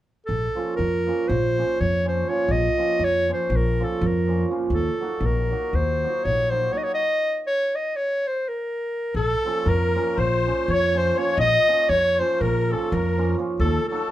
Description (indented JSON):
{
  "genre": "balkan folk, Balkan wedding band",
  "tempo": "243 BPM (eighths)",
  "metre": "9/8",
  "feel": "straight",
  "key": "Bb harmonic minor",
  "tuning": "A4 = 442 Hz",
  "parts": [
    { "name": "clear clarinet", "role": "melody", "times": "0.3-14.1 s", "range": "A4 to Eb5", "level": "-22 LUFS", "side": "equal", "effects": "none" },
    { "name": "upright bass", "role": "bass", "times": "0.3-13.8 s", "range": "Bb1 to F2", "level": "-24 LUFS", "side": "left 1 dB", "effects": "none" },
    { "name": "cimbalom", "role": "accompaniment", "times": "0.6-14.1 s", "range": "F3 to Gb4", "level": "-27 LUFS", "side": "right 4 dB", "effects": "none" },
    { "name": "musette accordion", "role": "second line", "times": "9.1-14.1 s", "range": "A4 to Eb5", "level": "-30 LUFS", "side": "left 5 dB", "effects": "none" }
  ],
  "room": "moderate studio reverb, RT60 0.7 s",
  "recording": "band playing live in one room",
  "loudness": "-20 LUFS",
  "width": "side -13 dB against mid",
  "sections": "0.3-9.2 A section; 9.2-14.1 A section",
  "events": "none",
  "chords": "0.3 Bbm; 4.7 Ebm; 6.9 N.C.; 9.2 Bbm; 13.6 Ebm"
}